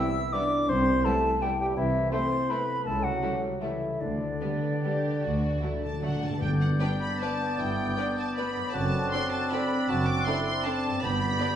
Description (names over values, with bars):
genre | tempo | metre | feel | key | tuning
classical, orchestral ballroom waltz | 139-179 BPM | 3/4 | rubato | G major | A4 = 439 Hz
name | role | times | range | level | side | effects
rich symphonic violin section | melody | 0.0-11.6 s | B3 to D6 | -34 LUFS | left 1 dB | none
mellow clarinet | second line | 0.0-11.6 s | B3 to E5 | -34 LUFS | equal | none
silver concert flute | second line | 0.0-11.6 s | D5 to G6 | -32 LUFS | left 1 dB | none
warm symphonic violin section | second line | 0.0-11.5 s | A3 to D5 | -40 LUFS | left 1 dB | none
warm symphonic viola section | accompaniment | 0.0-11.5 s | F#3 to D4 | -39 LUFS | right 2 dB | none
mellow French horn section | sustained chords | 0.0-11.6 s | D3 to E4 | -34 LUFS | left 1 dB | none
concert harp | arpeggios | 0.0-11.6 s | F#2 to E5 | -35 LUFS | left 2 dB | none
warm symphonic cello section | bass | 0.7-11.3 s | C2 to G2 | -34 LUFS | right 1 dB | none
warm symphonic double bass section | bass | 0.7-11.3 s | F#1 to D2 | -35 LUFS | right 2 dB | none
timpani | percussion | 5.2-7.0, 11.0-11.5 s | G2 to D3 | -31 LUFS | equal | none
warm oboe | second line | 6.4-11.6 s | D5 | -37 LUFS | right 3 dB | none
mellow bassoon | accompaniment | 6.8-11.6 s | B3 to F#4 | -36 LUFS | right 3 dB | none
room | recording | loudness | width
wet recital hall reverb, RT60 1.3 s | recorded in a church or concert hall, nothing above 10.7 kHz | -25 LUFS | side -9 dB against mid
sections
0.0-6.4 A section; 6.4-11.6 B section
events
timpani fill 5.2-6.4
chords
0.0 Cmaj7; 1.8 Am/C; 2.9 A7/C#; 4.0 G/D; 5.2 D; 6.4 G; 8.7 D7/F#; 11.0 G